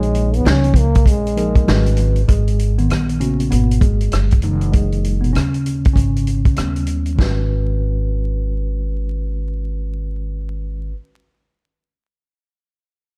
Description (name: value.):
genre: hip hop, jazz-hop.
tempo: 98 BPM.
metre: 4/4.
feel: swing 62% on 16ths.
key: G# minor.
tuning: A4 = 436 Hz.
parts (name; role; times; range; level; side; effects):
dark trombone; melody; 0.0-2.0 s; G#3 to C#4; -24 LUFS; equal; analog delay.
mellow tine electric piano; accompaniment; 0.0-11.0 s; B2 to C#5; -25 LUFS; equal; none.
upright bass; bass; 0.0-10.9 s; F#1 to D#2; -21 LUFS; equal; none.
vintage drum kit; drums; 0.0-7.4 s; hi-hat, kick drum, rim click, snare drum; -19 LUFS; equal; none.
egg shaker and congas; percussion; 0.0-2.3 s; none; -36 LUFS; equal; none.
room: small room ambience.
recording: dark, warm production, vinyl crackle.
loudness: -17 LUFS.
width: mono.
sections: 0.0-2.3 A section; 2.3-7.2 B section; 7.2-9.6 C section.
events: tine electric piano solo 2.3-7.2.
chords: 0.0 A#m7; 1.7 G#m7; 2.3 G#m9; 4.4 F#13; 6.6 D#7b13; 7.2 G#m7.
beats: 0.45 1.06 1.68 | 2.29 2.90 3.51 4.13 | 4.74 5.35 5.96 6.58 | 7.19 7.80 8.41 9.02.